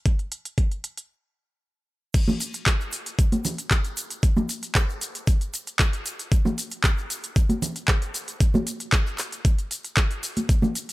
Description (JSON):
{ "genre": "nu-disco", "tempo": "115 BPM", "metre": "4/4", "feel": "straight", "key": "none", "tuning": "none", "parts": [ { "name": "electronic kick drum", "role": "drums", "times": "0.1-10.6 s", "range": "none", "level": "-21 LUFS", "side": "equal", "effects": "small room ambience" }, { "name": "pop drum kit", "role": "drums", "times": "0.1-10.9 s", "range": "crash cymbal, handclaps, hi-hat, shaker", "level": "-27 LUFS", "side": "equal", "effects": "small room ambience" }, { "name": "egg shaker and congas", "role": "percussion", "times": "2.1-10.9 s", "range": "none", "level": "-26 LUFS", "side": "right 1 dB", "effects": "none" } ], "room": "little or no reverb", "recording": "none", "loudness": "-22 LUFS", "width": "side -19 dB against mid", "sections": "0.0-2.1 A section; 2.1-10.9 B section", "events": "stop 1.1-2.1; drop 2.1-10.9", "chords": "none", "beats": "| 0.06 0.58 1.10 1.62 | 2.15 2.67 3.19 3.71 | 4.23 4.75 5.28 5.80 | 6.32 6.84 7.36 7.88 | 8.41 8.93 9.45 9.97 | 10.49" }